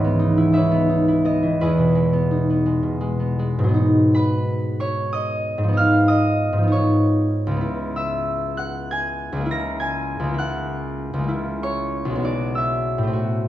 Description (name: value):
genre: classical, solo harp piece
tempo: 52-67 BPM (dotted quarters)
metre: 6/8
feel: rubato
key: unclear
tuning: A4 = 440 Hz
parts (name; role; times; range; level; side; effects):
- concert harp; solo; 0.0-13.5 s; B1 to A#6; -18 LUFS; equal; none
room: wet recital hall reverb, RT60 1.5 s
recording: recorded in a church or concert hall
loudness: -18 LUFS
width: side -13 dB against mid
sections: 0.0-3.8 A section; 3.8-13.5 B section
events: none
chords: 0.0 C#m9; 1.6 Emaj7; 3.8 G#m7; 5.8 C#9/G#; 7.6 C#m7; 9.5 F#9/C#; 11.3 C#m6; 12.2 Bm6